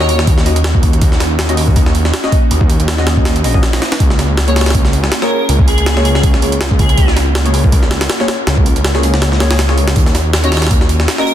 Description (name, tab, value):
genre	drum and bass, jungle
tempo	161 BPM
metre	4/4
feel	swing 55% on 16ths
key	Eb minor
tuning	A4 = 439 Hz
part	airy dreamy lead	melody	0.0-0.2, 4.5-7.1, 10.4-11.3 s	Ab4 to Db5	-21 LUFS	equal	chorus, dub echo
part	airy breathy pad	sustained chords	0.0-11.3 s	Bb3 to Bb4	-22 LUFS	right 3 dB	chorus
part	deep mellow chord stab	stabs	0.0-11.3 s	Bb3 to Eb5	-21 LUFS	left 3 dB	chorus, dub echo
part	detuned saw bass	bass	0.0-11.1 s	Bb1 to Eb2	-14 LUFS	equal	tube saturation
part	jungle sampler-style drum kit	drums	0.0-11.3 s	hi-hat, kick drum, snare drum	-13 LUFS	equal	none
part	loose indie drum kit	drums	10.0-11.3 s	hi-hat, snare drum	-26 LUFS	right 3 dB	none
room	little or no reverb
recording	dense, heavily limited modern master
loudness	-10 LUFS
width	side -11 dB against mid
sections	0.0-11.3 A section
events	kick drops out 9.2-10.0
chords	0.0 Ebm7; 4.0 Bbm7/Db; 10.0 Ebm7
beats	0.27 0.65 | 1.02 1.39 1.76 2.14 | 2.51 2.88 3.25 3.63 | 4.00 4.37 4.75 5.12 | 5.49 5.86 6.24 6.61 | 6.98 7.35 7.73 8.10 | 8.47 8.85 9.22 9.59 | 9.96 10.34 10.71 11.08